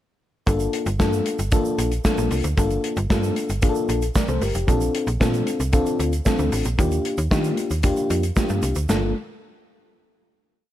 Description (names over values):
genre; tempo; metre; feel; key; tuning
early-eighties boogie funk; 114 BPM; 4/4; straight; G minor; A4 = 440 Hz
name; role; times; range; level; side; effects
mellow FM electric piano; accompaniment; 0.5-9.1 s; A3 to D5; -24 LUFS; left 2 dB; chorus
slap-like FM bass; bass; 0.5-9.1 s; F1 to Eb3; -24 LUFS; right 1 dB; none
modern studio drum kit; drums; 0.5-9.0 s; hi-hat, kick drum, snare drum; -23 LUFS; equal; gated reverb
tube shaker; percussion; 0.5-9.1 s; none; -38 LUFS; right 12 dB; none
room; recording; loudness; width
small room reverb; none; -19 LUFS; side -12 dB against mid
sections
0.5-8.9 verse; 8.9-10.7 final chord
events
none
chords
0.5 Gm9; 4.7 Bbmaj7; 6.8 Ebmaj9; 8.9 Gm9